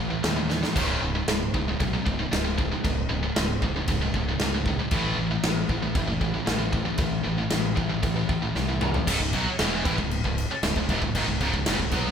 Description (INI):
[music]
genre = heavy metal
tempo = 115 BPM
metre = 4/4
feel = straight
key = C# minor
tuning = A4 = 441 Hz
[part]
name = heavy high-gain guitar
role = riff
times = 0.0-12.1 s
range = C#2 to B3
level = -27 LUFS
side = equal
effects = distortion
[part]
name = growling fingered electric bass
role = bass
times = 0.0-12.1 s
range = C#1 to D#2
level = -30 LUFS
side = equal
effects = overdrive
[part]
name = big rock drum kit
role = drums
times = 0.2-12.1 s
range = crash cymbal, kick drum, snare drum, splash cymbal, toms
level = -27 LUFS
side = equal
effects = none
[sound]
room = light reverb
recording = band playing live in one room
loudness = -23 LUFS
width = side -8 dB against mid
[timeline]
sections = 0.0-9.1 A section; 9.1-12.1 B section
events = drum fill 0.5, 8.6-9.1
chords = 0.0 A5; 0.8 C#5; 4.9 A5; 9.1 C#m